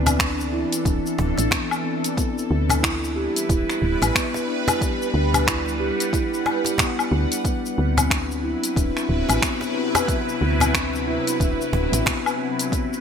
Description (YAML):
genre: organic downtempo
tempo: 91 BPM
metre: 4/4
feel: swing 59% on 16ths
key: D mixolydian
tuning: A4 = 440 Hz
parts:
  - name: bowed-like drone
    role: sustained chords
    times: 0.0-13.0 s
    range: C3 to F#5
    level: -26 LUFS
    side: right 1 dB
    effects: built-in reverb, phaser, sidechain pumping
  - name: steel tongue drum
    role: arpeggios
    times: 0.0-13.0 s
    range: B3 to G4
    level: -26 LUFS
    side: left 2 dB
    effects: vintage 12-bit sampler grit, ping-pong delay
  - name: woody FM bass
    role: bass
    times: 0.0-12.0 s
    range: D1 to D2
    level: -23 LUFS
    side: right 1 dB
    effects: sidechain pumping
  - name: deep house drum kit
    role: drums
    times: 0.1-13.0 s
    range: finger snaps, hi-hat, shaker, woodblock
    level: -24 LUFS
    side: left 2 dB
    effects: none
  - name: cajon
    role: percussion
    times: 0.1-12.2 s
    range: none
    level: -28 LUFS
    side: right 3 dB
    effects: none
  - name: electronic kick drum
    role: drums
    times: 0.2-12.9 s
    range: none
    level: -26 LUFS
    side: right 1 dB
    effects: none
room: moderate plate reverb, RT60 2.8 s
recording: bright 1980s-style digital production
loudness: -19 LUFS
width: side -7 dB against mid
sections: 0.0-13.0 A section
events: none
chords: 0.0 Cmaj9/D; 2.2 G6/D; 7.4 D13